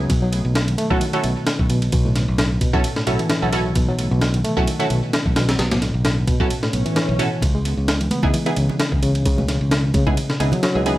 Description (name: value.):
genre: breakbeat, breaks.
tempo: 131 BPM.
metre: 4/4.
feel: swing 54% on 16ths.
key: unclear.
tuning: A4 = 438 Hz.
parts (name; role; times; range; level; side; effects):
reed electric piano; riff; 0.0-11.0 s; A2 to C#4; -22 LUFS; equal; tube saturation, tremolo, digital delay.
fingered electric bass; bass; 0.0-11.0 s; B1 to C#2; -22 LUFS; equal; none.
breakbeat sampler-style drum kit; drums; 0.1-11.0 s; kick drum, ride cymbal, snare drum; -22 LUFS; equal; small room ambience.
orchestra-hit-like synth stab; stabs; 0.9-10.9 s; B3 to A4; -25 LUFS; right 2 dB; built-in reverb, cassette tape, digital delay.
swell; sound effects; 6.7-7.4 s; none; -30 LUFS; equal; none.
congas; percussion; 8.1-10.6 s; none; -26 LUFS; right 1 dB; none.
room: light reverb.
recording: vinyl crackle.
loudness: -17 LUFS.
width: side -16 dB against mid.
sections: 0.0-11.0 A section.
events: swell 6.7-7.4.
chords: 0.1 B7sus4; 7.4 C#m9.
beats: | 0.09 0.55 1.01 1.47 | 1.93 2.38 2.84 3.30 | 3.76 4.22 4.67 5.13 | 5.59 6.05 6.51 6.96 | 7.42 7.88 8.34 8.80 | 9.25 9.71 10.17 10.63.